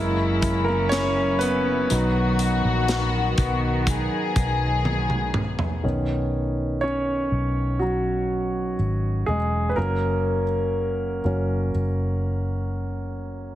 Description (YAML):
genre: pop ballad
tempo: 61 BPM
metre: 4/4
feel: straight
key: B major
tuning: A4 = 440 Hz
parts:
  - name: warm concert grand piano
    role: accompaniment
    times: 0.0-13.6 s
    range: D#3 to C#5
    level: -25 LUFS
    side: right 1 dB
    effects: none
  - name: warm studio string section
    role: sustained chords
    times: 0.0-5.8 s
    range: C#3 to G#4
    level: -25 LUFS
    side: left 2 dB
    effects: none
  - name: vintage muted fingered electric bass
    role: bass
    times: 0.0-13.6 s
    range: E1 to B1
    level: -26 LUFS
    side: equal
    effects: none
  - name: modern studio drum kit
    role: drums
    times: 0.4-5.8 s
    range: hi-hat, kick drum, snare drum, toms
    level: -27 LUFS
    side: equal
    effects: none
room: light reverb, small room ambience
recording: heavily compressed radio sound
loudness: -21 LUFS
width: side -13 dB against mid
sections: 0.0-5.8 A section; 5.8-13.6 B section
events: grand piano solo 0.0-5.8, 5.8-13.6; drum fill 4.9-5.8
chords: 0.0 F#7sus4; 1.9 B; 5.8 Badd9; 9.8 F#